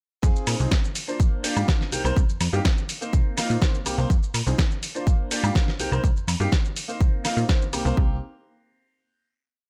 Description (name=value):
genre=filtered disco house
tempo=124 BPM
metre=4/4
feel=straight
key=C minor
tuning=A4 = 441 Hz
part: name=clear baby grand piano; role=accompaniment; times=0.2-8.2 s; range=Bb3 to C5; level=-32 LUFS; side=equal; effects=phaser, sidechain pumping
part: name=plucky analog bass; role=bass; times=0.2-8.2 s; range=Bb1 to Bb2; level=-27 LUFS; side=equal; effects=sidechain pumping
part: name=dusty soul sampler-style drum kit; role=drums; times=0.2-8.0 s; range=hi-hat, shaker, snare drum, woodblock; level=-30 LUFS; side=equal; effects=none
part: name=electronic kick drum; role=drums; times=0.2-8.1 s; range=none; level=-24 LUFS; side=equal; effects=none
room=little or no reverb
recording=none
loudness=-23 LUFS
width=mono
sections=0.2-8.0 drop; 8.0-9.7 final chord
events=drop 0.2-8.0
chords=0.2 Fm7; 1.2 Bb7; 1.9 Cm7; 4.1 F5; 5.1 Bb7; 5.8 Cm7; 8.0 N.C.